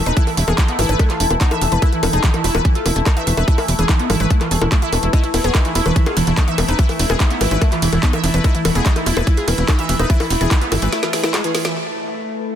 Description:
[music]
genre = psychedelic trance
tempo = 145 BPM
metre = 4/4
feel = straight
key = E major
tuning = A4 = 440 Hz
[part]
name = formant-sweep wobble bass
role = second line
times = 0.0-10.9 s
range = E3 to E4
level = -37 LUFS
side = right 4 dB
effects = none
[part]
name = overtone-sweeping drone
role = sustained chords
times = 0.0-12.6 s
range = A3 to A4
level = -25 LUFS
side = left 2 dB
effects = chorus, built-in reverb, sidechain pumping
[part]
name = tight sequencer bass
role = bass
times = 0.0-10.9 s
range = E1 to G#1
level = -18 LUFS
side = equal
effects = none
[part]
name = downlifter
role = sound effects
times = 0.0-1.8 s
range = none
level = -39 LUFS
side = equal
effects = none
[part]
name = overdriven synth lead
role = melody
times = 0.1-11.7 s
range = E3 to A4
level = -23 LUFS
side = right 1 dB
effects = chorus, phaser, sidechain pumping, dub echo
[part]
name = wide unison pluck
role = riff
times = 0.1-11.7 s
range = D#4 to E5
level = -24 LUFS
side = equal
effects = auto-pan, sidechain pumping, dub echo
[part]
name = drum and bass drum kit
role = drums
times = 0.1-11.7 s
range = bongos, handclaps, hi-hat, ride cymbal, snare drum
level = -22 LUFS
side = left 1 dB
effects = none
[part]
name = electronic kick drum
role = drums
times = 0.2-10.6 s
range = none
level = -15 LUFS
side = equal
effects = none
[part]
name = ethereal airy pad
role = texture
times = 12.2-12.6 s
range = E4 to E6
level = -35 LUFS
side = left 3 dB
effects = ensemble chorus, built-in reverb, phaser, sidechain pumping
[sound]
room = little or no reverb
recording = dense, heavily limited modern master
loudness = -14 LUFS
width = side -10 dB against mid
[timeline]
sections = 0.0-11.8 A section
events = drop 0.0-11.8; break 10.9-11.8; drum fill 10.9-11.8; band accent 11.7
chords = 0.0 E5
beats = | 0.17 0.58 0.99 1.41 | 1.82 2.24 2.65 3.06 | 3.48 3.89 4.30 4.72 | 5.13 5.55 5.96 6.37 | 6.79 7.20 7.62 8.03 | 8.44 8.86 9.27 9.68 | 10.10 10.51 10.93 11.34 | 11.75 12.17

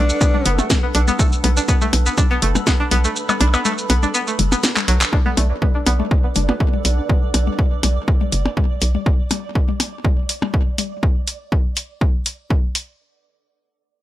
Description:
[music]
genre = minimal techno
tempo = 122 BPM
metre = 4/4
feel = swing 53% on 16ths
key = B minor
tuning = A4 = 439 Hz
[part]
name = breathy alto saxophone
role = melody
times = 0.0-0.7 s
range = D4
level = -23 LUFS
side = left 1 dB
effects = digital delay
[part]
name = hollow knocking FM bass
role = bass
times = 0.0-9.0 s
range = F#1 to B1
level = -17 LUFS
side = equal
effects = sidechain pumping
[part]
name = granular cloud pad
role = texture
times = 0.0-9.1 s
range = D4 to B5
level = -29 LUFS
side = right 1 dB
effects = built-in reverb, sidechain pumping
[part]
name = garage drum kit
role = drums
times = 0.1-12.9 s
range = handclaps, hi-hat, shaker, snare drum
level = -20 LUFS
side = equal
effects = none
[part]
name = string-like resonator pluck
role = riff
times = 0.2-7.0 s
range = F#3 to D4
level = -23 LUFS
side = equal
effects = chorus, sidechain pumping, tape echo
[part]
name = electronic kick drum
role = drums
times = 0.2-12.6 s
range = none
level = -17 LUFS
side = equal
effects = none
[part]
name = electronic toms and percussion blips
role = percussion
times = 0.3-10.9 s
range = none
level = -25 LUFS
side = left 4 dB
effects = digital delay
[part]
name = pulsing gated texture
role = texture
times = 5.3-11.0 s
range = D5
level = -32 LUFS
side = right 8 dB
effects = chorus, built-in reverb, sidechain pumping
[part]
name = filtered dub chord stab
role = stabs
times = 6.5-6.6 s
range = A3 to F#4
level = -28 LUFS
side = right 5 dB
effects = none
[sound]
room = little or no reverb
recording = none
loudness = -16 LUFS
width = side -14 dB against mid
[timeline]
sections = 0.0-5.1 A section; 5.1-13.0 B section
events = drop 0.0-5.1; kick drops out 3.2-5.1; drum fill 4.8-5.1; fade-out on ambient pad 5.1-9.1; filter sweep on FM bass 5.1-9.1; filter sweep on synth pluck 5.1-7.1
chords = 0.0 Bm7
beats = 0.21 0.70 | 1.19 1.69 2.18 2.67 | 3.16 3.65 4.14 4.63 | 5.13 5.62 6.11 6.60 | 7.09 7.59 8.08 8.57 | 9.06 9.55 10.04 10.54 | 11.03 11.52 12.01 12.50

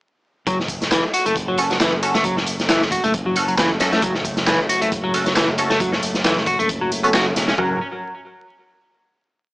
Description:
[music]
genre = breakbeat, breaks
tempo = 135 BPM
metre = 4/4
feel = swing 55% on 16ths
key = F# minor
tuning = A4 = 439 Hz
[part]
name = electric guitar at the edge of break-up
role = riff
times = 0.5-7.8 s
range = E3 to F#4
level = -21 LUFS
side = equal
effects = phaser, digital delay
[part]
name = modern bright fingered electric bass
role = bass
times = 0.5-7.8 s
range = E1 to F#2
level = -28 LUFS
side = equal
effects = none
[part]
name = crunchy breakbeat drum kit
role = drums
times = 0.5-7.7 s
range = hi-hat, kick drum, snare drum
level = -22 LUFS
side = equal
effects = none
[part]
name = punchy analog drum machine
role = drums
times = 0.5-7.6 s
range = handclaps, ride cymbal, tambourine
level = -26 LUFS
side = equal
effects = overdrive
[part]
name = band-passed chord stab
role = stabs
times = 1.6-7.8 s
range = C#4 to A#4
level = -23 LUFS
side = right 1 dB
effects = phaser, wide subtle chorus, digital delay
[part]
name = bright tonewheel organ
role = sustained chords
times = 4.0-7.8 s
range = C#3 to C#5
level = -29 LUFS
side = equal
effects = slow rotary speaker, vintage 12-bit sampler grit, sidechain pumping
[sound]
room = light reverb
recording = vinyl crackle, small speaker sound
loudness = -17 LUFS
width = side -20 dB against mid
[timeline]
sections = 0.5-7.6 drop; 7.6-9.4 final chord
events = drop 0.5-7.6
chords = 0.5 F#m; 7.6 F#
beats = | 0.47 0.92 1.36 1.80 | 2.25 2.69 3.14 3.58 | 4.03 4.47 4.92 5.36 | 5.80 6.25 6.69 7.14 | 7.58

